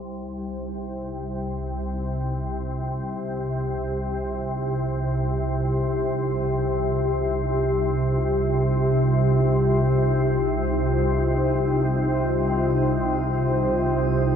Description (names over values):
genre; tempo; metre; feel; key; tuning
dark ambient drone; free time; none; none; C minor; A4 = 440 Hz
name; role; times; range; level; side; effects
dark analog pad; sustained chords; 0.7-14.4 s; Eb4 to C5; -30 LUFS; right 1 dB; chorus, shimmer reverb
organ-like drone; drone; 0.0-14.4 s; C2 to C3; -22 LUFS; equal; ensemble chorus, built-in reverb
room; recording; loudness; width
wet huge ambient reverb, RT60 8.0 s; none; -21 LUFS; side -8 dB against mid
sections
0.0-14.4 A section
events
fade-in on analog synth pad 0.0-14.4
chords
0.0 Cm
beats
free time